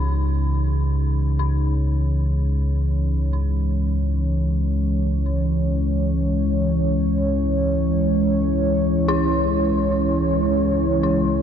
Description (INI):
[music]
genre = dark ambient drone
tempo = free time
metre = none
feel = none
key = C# minor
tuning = A4 = 440 Hz
[part]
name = dark analog pad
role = sustained chords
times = 0.0-11.4 s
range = E3 to C#5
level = -22 LUFS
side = equal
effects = chorus
[part]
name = dark detuned synth bell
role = arpeggios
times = 0.0-11.4 s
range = D#4 to E4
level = -29 LUFS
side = left 4 dB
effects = chorus, ping-pong delay
[part]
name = deep rumbling drone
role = drone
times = 0.0-11.4 s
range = C#2 to C#3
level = -21 LUFS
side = equal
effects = built-in reverb
[sound]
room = wet huge ambient reverb, RT60 8.7 s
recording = nothing above 7.9 kHz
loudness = -18 LUFS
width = side -8 dB against mid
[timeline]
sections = 0.0-11.4 A section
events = none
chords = 0.0 C#m